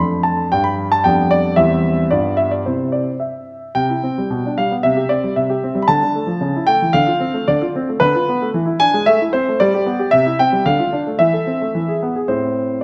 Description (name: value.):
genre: classical-period piano sonatina.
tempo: 112 BPM.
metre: 2/4.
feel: straight.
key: C major, A minor from 8.0 s.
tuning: A4 = 440 Hz.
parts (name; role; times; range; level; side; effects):
warm grand piano; solo; 0.0-12.8 s; E2 to B5; -17 LUFS; equal; none.
room: moderate recital hall reverb, RT60 1.7 s.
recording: none.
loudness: -17 LUFS.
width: mono.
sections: 0.0-3.8 A section; 3.8-12.3 B section.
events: none.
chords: 0.0 Dm/F; 0.5 G; 1.0 G7/F; 1.6 C/E; 2.1 G7; 2.7 C; 4.3 G/B; 4.8 C; 5.9 Dm; 6.4 A/C#; 7.0 Dm7; 8.0 Bm7b5/D; 8.5 E7; 9.1 Am; 9.6 G; 10.1 C; 10.6 Dm; 11.2 Am/E; 11.7 E; 12.3 Am.